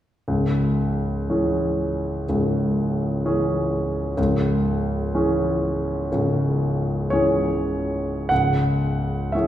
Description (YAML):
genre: classical, romantic character piece for solo piano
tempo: 47-65 BPM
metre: 4/4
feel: rubato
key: C# minor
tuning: A4 = 440 Hz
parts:
  - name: clear grand piano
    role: solo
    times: 0.3-9.5 s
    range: C#1 to F#5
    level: -20 LUFS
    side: equal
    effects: none
room: wet recital hall reverb, RT60 1.5 s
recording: recorded in a church or concert hall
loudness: -20 LUFS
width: side -12 dB against mid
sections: 0.3-8.3 A section; 8.3-9.5 B section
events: none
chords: 0.3 C#m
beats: | 0.28 1.29 2.29 3.25 | 4.18 5.14 6.12 7.13 | 8.31 9.35